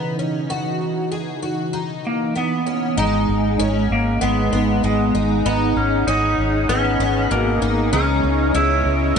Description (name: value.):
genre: dream pop.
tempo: 97 BPM.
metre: 4/4.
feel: straight.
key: G# minor.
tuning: A4 = 440 Hz.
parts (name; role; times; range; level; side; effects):
warm analog pad; sustained chords; 0.0-9.2 s; B2 to F#5; -26 LUFS; right 2 dB; chorus.
picked twelve-string acoustic guitar; arpeggios; 0.0-9.2 s; B2 to G#4; -23 LUFS; left 5 dB; analog chorus, digital delay.
clean lap steel guitar; melody; 2.1-9.2 s; G#3 to E4; -20 LUFS; right 2 dB; digital delay.
vintage muted fingered electric bass; bass; 3.0-9.2 s; G#1 to C#2; -22 LUFS; equal; none.
mellow electric guitar; accompaniment; 7.9-9.2 s; C#3 to G#4; -26 LUFS; right 7 dB; harmonic tremolo, analog chorus.
room: moderate huge ambient reverb, RT60 7.0 s.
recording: nothing above 10.9 kHz.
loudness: -17 LUFS.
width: side -6 dB against mid.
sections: 0.0-3.0 A section; 3.0-9.2 B section.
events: none.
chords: 0.0 C#m9; 3.0 G#m7; 7.9 C#m7.